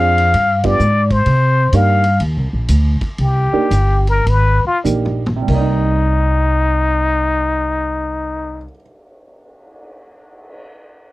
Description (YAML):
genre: jazz, small-group swing and bop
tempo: 91-130 BPM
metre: 4/4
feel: swing 66% on 8ths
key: C minor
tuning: A4 = 440 Hz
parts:
  - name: trumpet with plunger mute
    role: melody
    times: 0.0-8.7 s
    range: Eb4 to F5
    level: -17 LUFS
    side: left 3 dB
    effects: none
  - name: warm upright piano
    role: accompaniment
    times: 0.0-8.8 s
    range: C3 to D5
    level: -21 LUFS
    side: right 6 dB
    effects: none
  - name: upright bass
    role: bass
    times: 0.0-8.7 s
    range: G1 to C3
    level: -16 LUFS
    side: equal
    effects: none
  - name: vintage drum kit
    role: drums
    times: 0.2-10.6 s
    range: crash cymbal, cymbal swell, hi-hat, kick drum, ride cymbal, toms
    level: -29 LUFS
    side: equal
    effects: none
room: little or no reverb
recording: dry, close 1970s-style studio recording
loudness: -13 LUFS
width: side -18 dB against mid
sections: 0.0-5.5 A section; 5.5-10.8 B section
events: band accent 0.6; slowing down 1.3-5.5; drum fill 4.9-5.5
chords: 0.3 G7b9; 1.3 Cm9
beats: 0.34 0.80 | 1.26 1.73 2.20 2.68 | 3.19 3.71 4.26 4.85 | 5.49 6.14 6.80 7.46 | 8.12 8.78 9.44 10.10